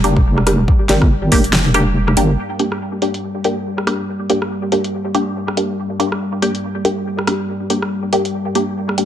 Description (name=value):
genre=deep dubstep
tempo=141 BPM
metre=4/4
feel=swing 58% on 16ths, half-time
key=G minor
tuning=A4 = 441 Hz
part: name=dark analog pad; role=sustained chords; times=0.0-9.1 s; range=G3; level=-23 LUFS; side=right 1 dB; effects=wide subtle chorus
part: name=filtered dub chord stab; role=stabs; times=0.0-9.1 s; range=Bb3 to G4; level=-19 LUFS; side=equal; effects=phaser, dub echo
part: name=deep soft wobble bass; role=bass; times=0.0-2.4 s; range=F1 to G1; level=-15 LUFS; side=equal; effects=chorus, tube saturation
part: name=deep house drum kit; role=drums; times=0.0-9.1 s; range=hi-hat, rim click, snare drum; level=-21 LUFS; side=equal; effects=low-pass filter on hats, low-pass filter on snare
part: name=electronic kick drum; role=drums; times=0.2-1.4 s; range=none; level=-14 LUFS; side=equal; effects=none
room=light reverb, digital ambience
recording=none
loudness=-15 LUFS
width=side -10 dB against mid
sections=0.0-2.4 A section; 2.4-9.1 B section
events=none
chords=0.0 Gm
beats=0.26 | 0.68 1.11 1.53 1.96 | 2.38 2.81 3.23 3.66 | 4.08 4.51 4.93 5.36 | 5.79 6.21 6.64 7.06 | 7.49 7.91 8.34 8.77